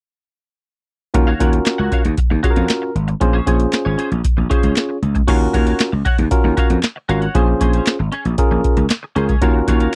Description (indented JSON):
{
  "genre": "early-eighties boogie funk",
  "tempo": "116 BPM",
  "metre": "4/4",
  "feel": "straight",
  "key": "unclear",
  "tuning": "A4 = 441 Hz",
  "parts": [
    { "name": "barky tine electric piano", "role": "accompaniment", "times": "1.1-9.9 s", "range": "Db4 to Db5", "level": "-22 LUFS", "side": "equal", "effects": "none" },
    { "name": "semi-hollow electric guitar", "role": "riff", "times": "1.1-9.9 s", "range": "Db4 to Gb5", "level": "-28 LUFS", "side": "equal", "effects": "ensemble chorus" },
    { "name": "gritty slap bass", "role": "bass", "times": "1.1-9.9 s", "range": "Ab1 to F2", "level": "-21 LUFS", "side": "equal", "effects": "overdrive" },
    { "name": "booming analog drum machine", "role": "drums", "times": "1.1-9.9 s", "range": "crash cymbal, handclaps, hi-hat, kick drum, snare drum", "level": "-18 LUFS", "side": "equal", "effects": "none" }
  ],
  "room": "little or no reverb",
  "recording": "dry, close 1970s-style studio recording",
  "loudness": "-17 LUFS",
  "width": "mono",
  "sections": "1.1-5.3 A section; 5.3-9.9 B section",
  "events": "none",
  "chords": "1.1 Ebm9; 3.2 Bbm9; 5.3 Ebm9; 7.3 Bbm9; 9.4 Ebm9"
}